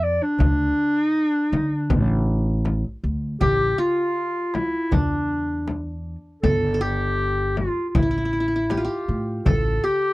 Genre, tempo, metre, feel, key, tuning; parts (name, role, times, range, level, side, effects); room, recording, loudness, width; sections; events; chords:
Arabic maqam ensemble; 80 BPM; 4/4; straight; D minor, A maqam bayati from 3.4 s; A4 = 440 Hz
mellow clarinet; melody; 0.0-10.1 s; D4 to D5; -22 LUFS; equal
upright bass; bass; 0.0-9.8 s; G1 to D3; -24 LUFS; equal
darbuka; percussion; 0.0-9.6 s; -29 LUFS; right 2 dB
frame drum; percussion; 0.4-9.6 s; -25 LUFS; left 2 dB
qanun; second line; 3.4-10.1 s; D4 to A4; -29 LUFS; equal
light reverb; dry, close 1970s-style studio recording; -20 LUFS; side -19 dB against mid
0.0-3.4 A section; 3.4-10.1 B section